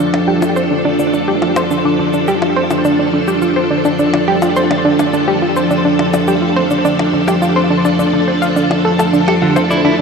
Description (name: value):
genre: ambient, sequencer-driven space music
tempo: 105 BPM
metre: 4/4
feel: straight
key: D minor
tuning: A4 = 441 Hz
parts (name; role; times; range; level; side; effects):
- string machine, full ensemble; sustained chords; 0.0-10.0 s; F3 to A4; -14 LUFS; equal; ensemble chorus
- analog pluck; riff; 0.0-10.0 s; D4 to F5; -15 LUFS; equal; chorus, analog delay
- percussion blips and shaker; percussion; 0.1-9.8 s; none; -26 LUFS; left 3 dB; overdrive, analog delay
- electric guitar at the edge of break-up; arpeggios; 9.3-9.9 s; D3 to A4; -16 LUFS; right 4 dB; auto-pan, analog delay
room: wet huge ambient reverb, RT60 7.8 s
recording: in a vast, echoing space, cassette tape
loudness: -11 LUFS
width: side -5 dB against mid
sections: 0.0-10.0 A section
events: none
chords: 0.0 Dm